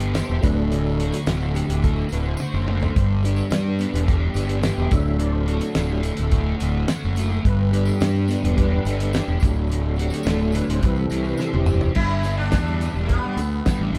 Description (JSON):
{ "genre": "psychedelic rock", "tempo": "107 BPM", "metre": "4/4", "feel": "straight", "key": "unclear", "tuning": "A4 = 439 Hz", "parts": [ { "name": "crunchy overdriven guitar", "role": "riff", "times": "0.0-14.0 s", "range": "D2 to C5", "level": "-28 LUFS", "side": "equal", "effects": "rotary speaker" }, { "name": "fuzz fingered electric bass", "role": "bass", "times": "0.0-14.0 s", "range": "D1 to G2", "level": "-25 LUFS", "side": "equal", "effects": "overdrive" }, { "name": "damped 70s drum kit", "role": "drums", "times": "0.0-14.0 s", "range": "crash cymbal, hi-hat, kick drum, snare drum, toms", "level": "-26 LUFS", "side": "equal", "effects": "none" }, { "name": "tambourine", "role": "percussion", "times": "0.1-13.8 s", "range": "none", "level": "-48 LUFS", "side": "equal", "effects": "none" }, { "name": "tonewheel organ", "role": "sustained chords", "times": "0.2-11.9 s", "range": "E3 to E5", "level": "-30 LUFS", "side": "equal", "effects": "chorus vibrato, slow rotary speaker" }, { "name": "sitar", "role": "melody", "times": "12.0-13.9 s", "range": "B3 to E4", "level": "-31 LUFS", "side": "equal", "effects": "none" } ], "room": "light reverb", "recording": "band playing live in one room", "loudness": "-22 LUFS", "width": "mono", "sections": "0.0-12.0 A section; 12.0-14.0 B section", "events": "tonewheel organ solo 0.0-12.0; drum fill 2.4-3.0, 11.4-12.0", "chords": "0.4 D; 3.0 G; 4.9 D; 7.5 G; 9.4 D; 10.8 C; 12.0 G", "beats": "0.15 | 0.71 1.27 1.83 2.39 | 2.96 3.52 4.08 4.64 | 5.20 5.77 6.33 6.89 | 7.45 8.02 8.58 9.14 | 9.71 10.27 10.83 11.40 | 11.96 12.53 13.09 13.66" }